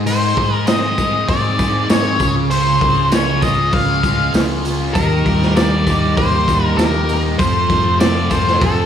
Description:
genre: psychedelic rock.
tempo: 98 BPM.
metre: 4/4.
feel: straight.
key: unclear.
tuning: A4 = 441 Hz.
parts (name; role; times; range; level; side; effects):
overdriven combo organ; sustained chords; 0.0-8.9 s; G3 to A4; -27 LUFS; right 3 dB; none.
thick fuzz guitar; riff; 0.0-8.9 s; Ab2 to F4; -20 LUFS; equal; distortion, phaser.
fingered electric bass; bass; 0.0-8.9 s; Db2 to Ab2; -20 LUFS; equal; none.
octave-fuzz lead guitar; melody; 0.1-8.9 s; A4 to F5; -18 LUFS; left 2 dB; distortion, slapback echo.
raw garage drum kit; drums; 0.1-8.8 s; hi-hat, kick drum, snare drum; -19 LUFS; equal; none.
tambourine; percussion; 0.1-8.7 s; none; -36 LUFS; right 6 dB; none.
room: light reverb.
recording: small room ambience.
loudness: -13 LUFS.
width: side -9 dB against mid.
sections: 0.0-8.9 A section.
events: none.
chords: 0.0 Ab; 2.2 Db; 5.0 Eb; 7.4 F.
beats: | 0.06 0.67 1.28 1.90 | 2.51 3.12 3.73 4.34 | 4.95 5.56 6.17 6.78 | 7.39 8.00 8.62.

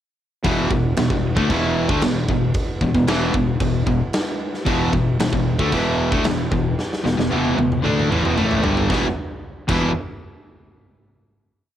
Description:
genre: hard rock.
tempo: 114 BPM.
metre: 4/4.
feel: straight.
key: E minor.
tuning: A4 = 440 Hz.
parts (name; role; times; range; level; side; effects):
mellow tonewheel organ; sustained chords; 0.4-9.1 s; E4 to G5; -34 LUFS; equal; none.
distorted electric guitar; riff; 0.4-9.9 s; E2 to E4; -22 LUFS; equal; overdrive, cassette tape.
overdriven electric guitar; riff; 0.4-9.9 s; E2 to D4; -24 LUFS; left 6 dB; cassette tape.
overdriven semi-hollow guitar; riff; 0.4-9.9 s; E2 to D4; -26 LUFS; right 8 dB; cassette tape.
fuzz fingered electric bass; bass; 0.4-9.9 s; E1 to D2; -26 LUFS; equal; overdrive.
huge arena drum kit; drums; 0.4-9.8 s; crash cymbal, kick drum, snare drum, toms; -23 LUFS; right 1 dB; cassette tape.
room: light reverb, studio reverb.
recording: home recording on cassette.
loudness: -17 LUFS.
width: side -11 dB against mid.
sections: 0.4-8.9 riff; 8.9-11.0 final chord.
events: drum fill 6.8-8.9.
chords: 0.4 Em.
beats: | 0.45 0.97 1.50 2.03 | 2.55 3.08 3.61 4.14 | 4.67 5.20 5.73 6.26 | 6.79 7.32 7.84 8.37 | 8.90 9.43.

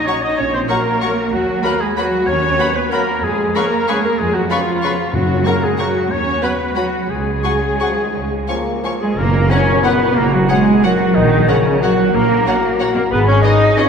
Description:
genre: classical, orchestral ballroom waltz.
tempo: 164-203 BPM.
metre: 3/4.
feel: rubato.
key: F# major.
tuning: A4 = 441 Hz.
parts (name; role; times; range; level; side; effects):
clear clarinet; second line; 0.0-13.9 s; C#4 to D#5; -23 LUFS; left 2 dB; none.
mellow small flute group; second line; 0.0-13.9 s; C#5 to Eb6; -25 LUFS; right 1 dB; none.
rich chamber viola section; accompaniment; 0.0-13.9 s; E#4 to Eb5; -24 LUFS; equal; none.
warm chamber cello section; bass; 0.0-13.9 s; C#3 to Eb4; -19 LUFS; right 2 dB; none.
rich symphonic violin section; melody; 0.1-13.9 s; D#5 to Db6; -27 LUFS; left 4 dB; none.
warm chamber violin section; second line; 0.1-13.8 s; B4 to B5; -28 LUFS; left 4 dB; none.
warm cor anglais; second line; 0.1-13.9 s; C#4 to D#5; -27 LUFS; right 2 dB; none.
warm bassoon; accompaniment; 0.1-9.0 s; C#3 to F#3; -28 LUFS; equal; none.
warm French horn section; sustained chords; 0.1-13.9 s; C#3 to A#4; -23 LUFS; left 6 dB; none.
warm chamber double bass section; bass; 0.4-13.4 s; F#1 to F#2; -21 LUFS; right 2 dB; none.
timpani; percussion; 5.1-5.6 s; F#2; -24 LUFS; left 2 dB; none.
cymbal swell and tam-tam; percussion; 7.1-10.4 s; none; -25 LUFS; left 1 dB; none.
room: wet church reverb, RT60 2.9 s.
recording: recorded in a church or concert hall.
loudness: -13 LUFS.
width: side -6 dB against mid.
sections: 0.0-9.2 A section; 9.2-13.9 B section.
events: band accent 9.2-9.5.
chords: 0.0 Gb/Bb; 1.3 B/D#; 3.2 C#7/E#; 5.1 F#; 6.1 B/D#; 7.1 C#sus4; 8.2 C#; 9.2 F#; 11.2 F#/A#; 13.1 G#m.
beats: 0.07 | 0.38 0.69 1.02 | 1.33 1.65 1.98 | 2.28 2.60 2.93 | 3.24 3.56 3.88 | 4.19 4.50 4.83 | 5.15 5.47 5.80 | 6.11 6.43 6.77 | 7.10 7.45 7.81 | 8.15 8.49 8.85 | 9.18 9.50 9.84 | 10.16 10.49 10.83 | 11.15 11.48 11.82 | 12.14 12.46 12.80 | 13.12 13.44 13.77.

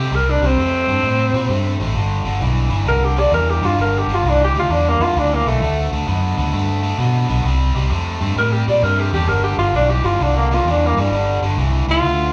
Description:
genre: electric blues shuffle.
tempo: 131 BPM.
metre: 4/4.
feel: swing 66% on 8ths.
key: unclear.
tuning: A4 = 440 Hz.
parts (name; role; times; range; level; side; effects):
mellow tenor saxophone; melody; 0.0-12.3 s; G3 to D5; -20 LUFS; equal; plate reverb, slapback echo.
biting overdriven guitar; riff; 0.0-12.3 s; G2 to B3; -26 LUFS; equal; slapback echo.
vintage muted fingered electric bass; bass; 0.0-12.3 s; G1 to B2; -21 LUFS; equal; none.
room: light reverb.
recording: live gig heard through the venue's PA, club reverb.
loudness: -17 LUFS.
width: mono.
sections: 0.0-12.3 A section.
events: tenor saxophone solo 0.0-12.3.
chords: 0.0 C5; 2.0 G5; 5.6 D; 7.5 C5; 9.3 G5.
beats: | 0.12 0.57 1.03 1.49 | 1.95 2.41 2.87 3.33 | 3.79 4.25 4.70 5.16 | 5.62 6.08 6.54 6.99 | 7.45 7.91 8.37 8.82 | 9.28 9.74 10.20 10.65 | 11.11 11.57 12.03.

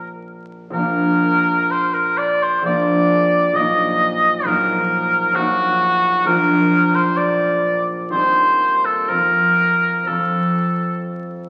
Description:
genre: classical, romantic duo for oboe and harp.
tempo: 65 BPM.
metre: 3/4.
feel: uneven beats, rubato.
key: Bb major.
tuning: A4 = 439 Hz.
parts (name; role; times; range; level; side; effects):
clear oboe; melody; 0.0-11.1 s; Gb4 to Eb5; -19 LUFS; equal; none.
concert harp; accompaniment; 0.0-11.5 s; Bb1 to F4; -23 LUFS; equal; none.
room: wet scoring stage reverb, RT60 2.0 s.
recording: very old 78 rpm record, vinyl crackle.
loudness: -17 LUFS.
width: mono.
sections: 0.7-11.5 A section.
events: none.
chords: 0.0 Bb; 3.6 Ebm/Bb; 6.3 Bb; 8.1 Cm/Eb; 9.1 F.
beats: | 0.73 1.70 2.64 | 3.56 4.46 5.36 | 6.26 7.18 8.12 | 9.10 10.09 11.07.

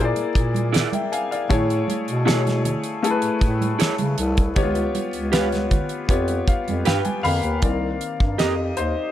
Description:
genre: lush 1970s-style soul.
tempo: 78 BPM.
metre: 4/4.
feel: straight.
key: unclear.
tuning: A4 = 441 Hz.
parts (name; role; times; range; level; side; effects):
warm baby grand piano; accompaniment; 0.0-9.1 s; Eb3 to Cb6; -23 LUFS; left 3 dB; none.
dark bass clarinet; bass; 0.0-8.9 s; C2 to C#3; -24 LUFS; equal; none.
damped 70s drum kit; drums; 0.2-8.9 s; hi-hat, kick drum, snare drum; -22 LUFS; equal; none.
congas; percussion; 0.2-7.4 s; none; -31 LUFS; right 5 dB; none.
electric guitar through a small old amp; riff; 0.7-8.5 s; E4 to F5; -28 LUFS; right 7 dB; none.
room: small room reverb.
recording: none.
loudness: -19 LUFS.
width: side -12 dB against mid.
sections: 0.0-7.6 A section; 7.6-9.1 B section.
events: grand piano fill 6.1-7.6; grand piano solo 7.6-9.1.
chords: 0.0 Bb7#11; 1.5 Amaj7; 4.6 Db7#11; 7.6 Cm7.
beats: 0.74 | 1.50 2.27 3.03 3.80 | 4.56 5.33 6.09 6.86 | 7.63 8.39.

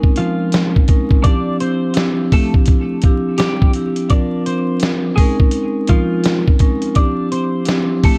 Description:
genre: hip hop, boom-bap hip-hop.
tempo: 84 BPM.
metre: 4/4.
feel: swing 62% on 16ths.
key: D minor.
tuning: A4 = 440 Hz.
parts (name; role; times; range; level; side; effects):
vibraphone with medium mallets; accompaniment; 0.0-8.2 s; F3 to Bb4; -21 LUFS; equal; cassette tape, high-pass filter, low-pass filter.
dusty soul sampler-style drum kit; drums; 0.0-8.2 s; hi-hat, kick drum, snare drum; -16 LUFS; equal; vintage 12-bit sampler grit.
twelve-string electric guitar; melody; 0.2-8.2 s; F3 to D5; -24 LUFS; equal; lush chorus, high-pass filter, low-pass filter, analog delay.
room: little or no reverb.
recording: dark, warm production, vinyl crackle.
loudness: -16 LUFS.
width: mono.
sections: 0.0-1.2 A section; 1.2-8.2 B section.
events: none.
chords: 0.0 Bbm11; 1.2 Dm11; 4.1 C9sus4; 5.2 Bbm11; 7.0 Dm11.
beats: 0.53 | 1.25 1.96 2.67 3.39 | 4.10 4.82 5.53 6.25 | 6.96 7.67.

